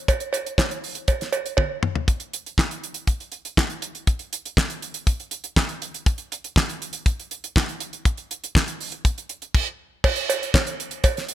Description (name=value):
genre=disco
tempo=120 BPM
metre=4/4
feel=straight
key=none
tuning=none
part: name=damped 70s drum kit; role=drums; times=0.1-11.3 s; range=crash cymbal, handclaps, hi-hat, kick drum, snare drum, toms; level=-21 LUFS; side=equal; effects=none
part: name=cowbell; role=percussion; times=0.1-1.7, 10.0-11.2 s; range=none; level=-26 LUFS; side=right 5 dB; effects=none
room=little or no reverb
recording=none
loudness=-22 LUFS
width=side -13 dB against mid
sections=0.0-2.1 A section; 2.1-10.0 B section; 10.0-11.3 C section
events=drum fill 1.6-2.1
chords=none